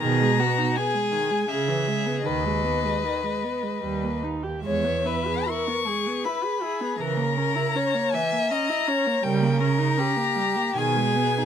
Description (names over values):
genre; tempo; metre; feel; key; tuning
classical, slow romantic movement for string quartet; 70-82 BPM; 3/4; rubato; G# minor; A4 = 440 Hz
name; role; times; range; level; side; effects
rich violin; melody; 0.0-11.4 s; D#5 to C#6; -27 LUFS; left 6 dB; none
rich violin; second line; 0.0-11.4 s; F#4 to E5; -27 LUFS; left 3 dB; none
warm viola; accompaniment; 0.0-11.4 s; C#3 to G#4; -29 LUFS; right 3 dB; none
warm cello; bass; 0.0-11.4 s; D#2 to C#3; -27 LUFS; right 5 dB; none
room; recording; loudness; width
light reverb; close, detailed microphones; -22 LUFS; side -8 dB against mid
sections
0.0-11.4 A section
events
none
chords
0.0 G#m/B; 1.5 C#m7; 2.3 G#m/D#; 3.8 D#; 4.6 E; 7.0 A#dim/C#; 9.3 D#7/C#; 10.8 G#m/B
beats
| 0.01 0.77 1.50 | 2.27 3.04 3.84 | 4.65 5.48 6.26 | 7.01 7.76 8.52 | 9.25 9.99 10.77